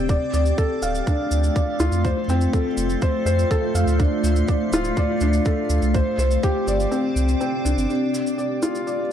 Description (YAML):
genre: piano and strings electronica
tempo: 123 BPM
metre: 4/4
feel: straight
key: D minor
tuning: A4 = 439 Hz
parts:
  - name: granular cloud pad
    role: sustained chords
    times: 0.0-9.1 s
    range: A3 to G5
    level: -25 LUFS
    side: equal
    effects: built-in reverb, sidechain pumping
  - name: felt-muted upright piano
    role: riff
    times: 0.0-9.1 s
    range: C4 to F5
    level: -23 LUFS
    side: left 1 dB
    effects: ping-pong delay
  - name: warm sub bass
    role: bass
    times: 0.0-7.9 s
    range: D1 to F2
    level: -21 LUFS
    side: right 1 dB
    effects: sidechain pumping
  - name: electronic kick drum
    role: drums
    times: 0.1-6.5 s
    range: none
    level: -21 LUFS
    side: right 1 dB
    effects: none
  - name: shaker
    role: drums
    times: 0.1-9.0 s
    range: none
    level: -36 LUFS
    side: right 2 dB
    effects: none
room: light reverb, digital ambience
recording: dark, warm production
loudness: -19 LUFS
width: side -9 dB against mid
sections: 0.0-7.9 A section; 7.9-9.1 B section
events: kick drops out 6.9-7.9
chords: 0.1 Dm; 2.0 F; 4.0 Dm; 5.9 Csus2; 7.9 Dm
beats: | 0.09 0.58 1.07 1.55 | 2.04 2.53 3.02 3.51 | 3.99 4.48 4.97 5.46 | 5.95 6.43 6.92 7.41 | 7.90 8.38 8.87